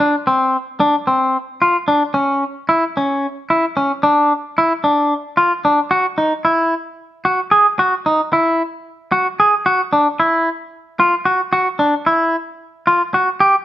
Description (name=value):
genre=progressive instrumental, progressive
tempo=224 BPM (eighths)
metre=7/8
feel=straight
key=unclear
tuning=A4 = 440 Hz
part: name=clean electric guitar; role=solo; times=0.0-13.5 s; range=C4 to Ab4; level=-14 LUFS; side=equal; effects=none
room=moderate stone room reverb, RT60 1.0 s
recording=band playing live in one room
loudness=-14 LUFS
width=side -13 dB against mid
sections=0.0-5.9 A section; 5.9-13.6 B section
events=none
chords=none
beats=0.00 | 0.27 0.54 0.81 1.08 1.34 1.61 1.88 | 2.15 2.42 2.69 2.96 3.23 3.50 3.77 | 4.03 4.30 4.57 4.84 5.11 5.38 5.64 | 5.91 6.18 6.45 6.71 6.98 7.25 7.52 | 7.79 8.05 8.32 8.59 8.86 9.12 9.39 | 9.66 9.93 10.19 10.46 10.73 10.99 11.26 | 11.53 11.80 12.06 12.33 12.60 12.87 13.13 | 13.40